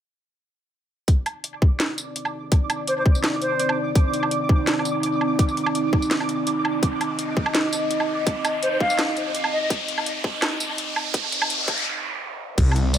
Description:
half-time drum and bass; 167 BPM; 4/4; half-time; C minor; A4 = 441 Hz
dark analog pad; sustained chords; 2.1-13.0 s; C4 to Eb5; -26 LUFS; right 1 dB; chorus, sidechain pumping
drum and bass drum kit; drums; 1.1-13.0 s; crash cymbal, hi-hat, snare drum, tambourine, woodblock; -25 LUFS; right 1 dB; analog delay
electronic kick drum; drums; 1.1-12.7 s; -19 LUFS; equal
riser and noise sweep; sound effects; 2.0-12.6 s; -30 LUFS; equal
pulsing gated texture; texture; 2.1-13.0 s; D5 to D6; -32 LUFS; right 4 dB; chorus, built-in reverb
reedy concert flute; melody; 2.9-3.8, 8.6-9.7 s; C5 to F5; -26 LUFS; left 1 dB; vintage 12-bit sampler grit, analog delay
phased detuned saw bass; bass; 12.6-13.0 s; C2; -18 LUFS; equal; phaser
moderate plate reverb, RT60 1.0 s; echo-heavy mix, high-pass filter; -20 LUFS; side -10 dB against mid
1.1-12.6 A section
build-up 1.1-12.6; filter sweep on analog synth pad 1.1-12.6; filter sweep 1.1-12.6; riser 2.0-11.9; noise sweep 11.1-12.6; break 11.9-12.6
1.1 Cmadd9

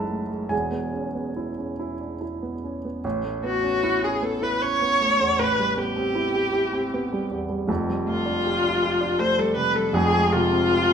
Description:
classical, impressionist duo for viola and grand piano; 69-81 BPM; 3/4; rubato; A4 = 442 Hz
warm grand piano; accompaniment; 0.0-10.9 s; E1 to B5; -25 LUFS; right 2 dB
rich viola; melody; 3.4-10.9 s; F4 to C#5; -21 LUFS; left 1 dB
wet stone room reverb, RT60 1.0 s; -21 LUFS; side -7 dB against mid
0.0-3.0 A section; 3.0-10.9 A section
0.0 F#m9; 0.5 E6; 3.0 Aadd9; 5.4 Cmaj7/A; 7.7 F69; 9.9 G#maj7/F

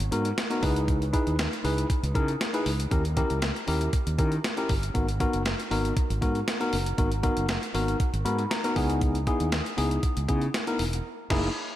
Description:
early-eighties boogie funk; 118 BPM; 4/4; straight; G# minor; A4 = 437 Hz
fretless electric bass; bass; 0.0-11.5 s; E1 to D#3; -28 LUFS; equal
clean 12-bit digital drum machine; drums; 0.0-11.5 s; crash cymbal, hi-hat, kick drum, snare drum; -28 LUFS; equal
tine electric piano; accompaniment; 0.1-11.5 s; A#3 to B5; -28 LUFS; left 1 dB
moderate lush hall reverb, RT60 2.0 s; big arena sound; -24 LUFS; side -13 dB against mid
0.0-11.8 A section
tine electric piano fill 8.0-9.0; band accent 11.1-11.8
0.0 G#m9; 0.6 C#m7; 2.9 D#7b9; 4.9 G#m9; 8.8 C#m7; 11.1 F#13

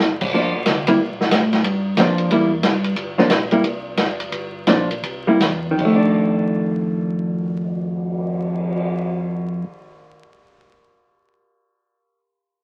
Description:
soul jazz organ trio; 154-183 BPM; 4/4; swing 64% on 8ths; F mixolydian; A4 = 440 Hz
mellow tonewheel organ; bass; 0.0-9.6 s; F1 to A2; -27 LUFS; equal; slow rotary speaker
swinging big-band drum kit; drums; 0.0-8.8 s; crash cymbal, cymbal swell, hi-hat, kick drum, ride cymbal, snare drum; -24 LUFS; equal
vintage hollow-body jazz guitar; accompaniment; 0.3-10.5 s; Eb3 to E4; -20 LUFS; equal
moderate studio reverb, RT60 0.6 s; very old 78 rpm record, vinyl crackle; -20 LUFS; mono
0.3-5.8 A section; 5.8-8.9 B section
slowing down 3.0-5.8
0.3 Gm7; 1.0 C5; 1.6 Gm7; 2.3 Edim; 3.0 Gm7; 3.6 F5; 4.3 Gm7; 5.0 C7; 5.8 F6

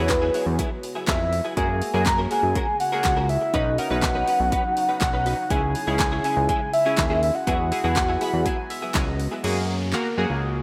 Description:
dance-pop; 122 BPM; 4/4; straight; A4 = 440 Hz
soft octave-layered synth lead; melody; 0.0-8.9 s; B4 to A#5; -26 LUFS; equal; chorus, phaser, digital delay
chorused retro synth keys; accompaniment; 0.0-10.6 s; A#3 to B5; -32 LUFS; equal; sidechain pumping
glassy FM pad; sustained chords; 0.4-10.6 s; C#3 to F#4; -40 LUFS; equal
direct-recorded clean electric guitar; riff; 0.0-9.5 s; F#3 to B4; -34 LUFS; equal; ensemble chorus
fat analog bass; bass; 0.0-10.6 s; B1 to F#2; -28 LUFS; equal; sidechain pumping
pop drum kit; drums; 0.1-10.0 s; crash cymbal, handclaps, hi-hat, kick drum, snare drum; -30 LUFS; equal
group handclap; percussion; 0.1-9.1 s; -40 LUFS; equal
downlifter; sound effects; 9.4-10.6 s; -38 LUFS; equal
moderate lush hall reverb, RT60 2.8 s; rough home demo mix; -23 LUFS; mono
0.0-9.4 A section; 9.4-10.6 B section
synth keys fill 8.0-9.4
0.0 Eadd9; 1.6 F#add9; 3.5 Badd9; 5.5 C#m; 7.5 Eadd9; 9.4 F#add9

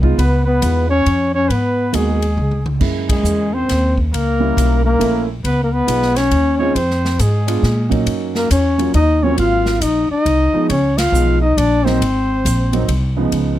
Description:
jazz, small-group swing and bop; 137 BPM; 3/4; swing 65% on 8ths; Db major; A4 = 440 Hz
warm upright piano; accompaniment; 0.0-13.6 s; Db2 to Gb4; -21 LUFS; right 5 dB
upright bass; bass; 0.0-13.6 s; Ab1 to Bb2; -18 LUFS; equal
swinging big-band drum kit; drums; 0.0-13.5 s; crash cymbal, hi-hat, kick drum, ride cymbal, snare drum, toms; -24 LUFS; equal
breathy trombone; melody; 0.2-13.2 s; Ab3 to F4; -18 LUFS; left 3 dB
warm trumpet; second line; 0.2-13.2 s; Ab4 to F5; -23 LUFS; right 4 dB
little or no reverb; close, detailed microphones; -14 LUFS; side -13 dB against mid
0.0-13.3 A section
drum fill 2.4-2.8; band accent 3.0, 10.9
0.2 Db7; 1.5 Abm7; 2.4 Db5; 2.8 Gb7; 4.1 Gdim7; 5.4 Db7; 6.8 Fm; 7.6 Gb69/Bb; 8.1 Ebm7; 9.4 Ab7; 10.7 Db7; 11.6 Bb; 12.0 Ab

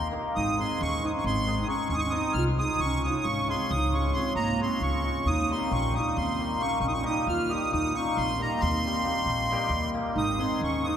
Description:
balkan folk, Balkan wedding band; 269 BPM (eighths); 11/8; straight; Eb mixolydian; A4 = 439 Hz
accordion; melody; 0.0-11.0 s; Bb5 to F6; -30 LUFS; right 1 dB; light tremolo tuning
dark clarinet; second line; 0.0-11.0 s; Bb3 to F4; -32 LUFS; right 3 dB
upright bass; bass; 0.0-10.9 s; Ab1 to Eb2; -30 LUFS; equal
cimbalom; accompaniment; 0.1-11.0 s; G3 to Bb4; -31 LUFS; left 2 dB
wet cathedral reverb, RT60 7.0 s; recorded in a church or concert hall; -25 LUFS; side -9 dB against mid
0.0-11.0 A section
0.3 Ab; 2.8 Db; 5.3 Eb; 10.2 Ab

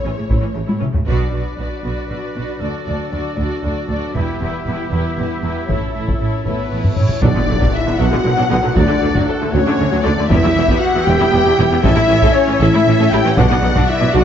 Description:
cinematic, epic orchestral film score; 78 BPM (dotted quarters); 6/8; straight; B minor; A4 = 440 Hz
dark symphonic violin section; melody; 0.0-14.2 s; A4 to G5; -25 LUFS; left 5 dB
warm symphonic violin section; second line; 0.0-14.2 s; G4 to G5; -27 LUFS; left 4 dB
rich symphonic viola section; accompaniment; 0.0-14.2 s; C#3 to A4; -23 LUFS; equal
mellow French horn section; sustained chords; 0.0-14.2 s; E3 to G4; -21 LUFS; left 2 dB
clear studio cello section; bass; 0.0-14.2 s; D2 to B2; -22 LUFS; right 2 dB
mellow tuba; bass; 0.0-0.9, 7.2-14.2 s; E1 to D2; -23 LUFS; right 3 dB
rich studio double bass section; bass; 0.0-14.2 s; E1 to D2; -22 LUFS; right 2 dB
taiko ensemble; drums; 0.3-14.2 s; -19 LUFS; equal
clear woodwind section; sustained chords; 1.1-14.2 s; A3 to F#5; -26 LUFS; equal
cymbal swell and tam-tam; percussion; 4.1-9.2 s; -30 LUFS; left 2 dB
reverse cymbal and impact; sound effects; 6.9-8.8 s; -28 LUFS; equal
mellow hollow silver concert flute; second line; 6.5-14.2 s; A4 to G5; -24 LUFS; left 1 dB
timpani; percussion; 13.4-14.1 s; B2; -23 LUFS; equal
moderate scoring stage reverb, RT60 1.6 s; dark, warm production, nothing above 7.6 kHz; -14 LUFS; side -9 dB against mid
0.0-1.1 A section; 1.1-7.2 B section; 7.2-14.2 C section
drum fill 0.7-1.1, 6.8-7.2; band accent 1.1-1.6, 7.2-7.7; reverse cymbal 6.9; impact 7.2-8.8
0.0 A; 1.1 Bm; 2.6 D; 4.2 Em; 5.7 A; 7.2 Bm; 8.8 D; 10.3 Em; 11.8 A; 13.4 Bm

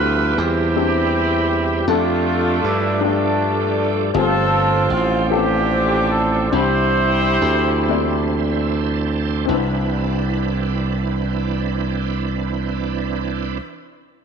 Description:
gospel; 34-53 BPM (dotted quarters); 6/8; straight; C major; A4 = 441 Hz
warm horn section; melody; 0.0-8.4 s; G3 to C5; -19 LUFS; equal
warm upright piano; accompaniment; 0.0-14.2 s; C2 to B5; -25 LUFS; left 12 dB
bright tonewheel organ; sustained chords; 0.0-13.6 s; E3 to A5; -26 LUFS; right 10 dB; slow rotary speaker, chorus vibrato
glassy slap bass; bass; 0.0-13.6 s; G1 to G2; -21 LUFS; right 1 dB
moderate echo chamber reverb, RT60 1.7 s, studio reverb; 1960s-style stereo with parts hard left and right; -16 LUFS; side -6 dB against mid
0.0-9.5 A section; 9.5-13.0 B section
slowing down 4.1-9.5; tonewheel organ fill 7.9-9.5
0.0 Dm11; 1.9 F69; 4.1 G9sus4; 6.5 Cmaj9

